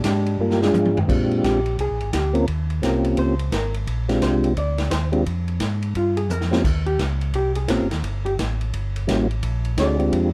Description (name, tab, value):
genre	soul jazz organ trio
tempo	172 BPM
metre	4/4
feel	swing 62% on 8ths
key	Bb mixolydian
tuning	A4 = 435 Hz
part	hollow-body jazz guitar	accompaniment	0.0-10.3 s	Ab3 to D5	-28 LUFS	equal	none
part	mellow tonewheel organ	bass	0.0-10.3 s	G1 to Bb2	-26 LUFS	equal	chorus vibrato, slow rotary speaker
part	swinging big-band drum kit	drums	0.0-10.2 s	crash cymbal, hi-hat, kick drum, ride cymbal, snare drum, toms	-30 LUFS	equal	none
part	percussive tonewheel organ	melody	0.4-10.3 s	G3 to Bb4	-23 LUFS	equal	slow rotary speaker, chorus vibrato
room	little or no reverb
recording	faint mains hum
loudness	-22 LUFS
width	mono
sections	0.0-1.1 A section; 1.1-10.3 A section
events	tonewheel organ solo 0.0-1.1; drum fill 0.4-1.1, 6.3-6.6; hollow-body jazz guitar solo 1.1-10.3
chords	0.0 Bb6; 1.1 Bb13; 2.5 Eb13; 3.9 Bb13; 6.6 Eb13; 8.0 Edim (rootless); 9.4 Bb13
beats	0.04 0.38 0.73 | 1.08 1.43 1.77 2.12 | 2.47 2.82 3.17 3.52 | 3.86 4.21 4.56 4.91 | 5.25 5.60 5.95 6.30 | 6.65 6.99 7.34 7.69 | 8.04 8.38 8.73 9.08 | 9.43 9.78 10.12